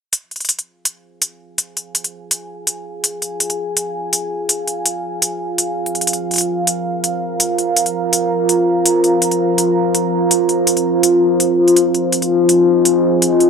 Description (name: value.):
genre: half-time drum and bass.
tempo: 165 BPM.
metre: 4/4.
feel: half-time.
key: F minor.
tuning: A4 = 440 Hz.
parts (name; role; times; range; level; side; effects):
deep dark ambient pad; sustained chords; 2.0-13.5 s; F4 to Bb5; -15 LUFS; equal; chorus, built-in reverb.
electronic hi-hat; drums; 0.1-13.5 s; none; -16 LUFS; equal; none.
room: moderate echo chamber reverb, RT60 1.8 s, digital ambience.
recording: dry, gritty hardware recording.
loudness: -14 LUFS.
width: side -6 dB against mid.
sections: 0.1-13.5 A section.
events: filter sweep on ambient pad 0.1-13.5.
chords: 0.1 Fm.